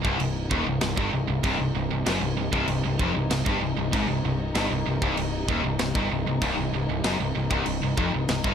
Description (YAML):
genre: heavy metal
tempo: 96 BPM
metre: 4/4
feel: straight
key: C minor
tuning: A4 = 442 Hz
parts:
  - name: warm studio string section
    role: sustained chords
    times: 0.0-8.5 s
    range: C3 to Eb4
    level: -34 LUFS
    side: left 4 dB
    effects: none
  - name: scooped high-gain guitar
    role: riff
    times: 0.0-8.5 s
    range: C2 to Ab2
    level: -28 LUFS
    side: right 11 dB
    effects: distortion
  - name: sludgy distorted guitar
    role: riff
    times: 0.0-8.5 s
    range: C2 to Ab2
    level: -29 LUFS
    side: left 9 dB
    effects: overdrive
  - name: growling picked electric bass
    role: bass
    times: 0.0-8.5 s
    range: C1 to Ab1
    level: -30 LUFS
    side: equal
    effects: overdrive
  - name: tight metal drum kit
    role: drums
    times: 0.0-8.5 s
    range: crash cymbal, kick drum, snare drum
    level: -30 LUFS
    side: equal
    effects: none
room: light reverb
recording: none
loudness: -23 LUFS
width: side -8 dB against mid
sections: 0.0-8.5 A section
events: none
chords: 0.0 Cm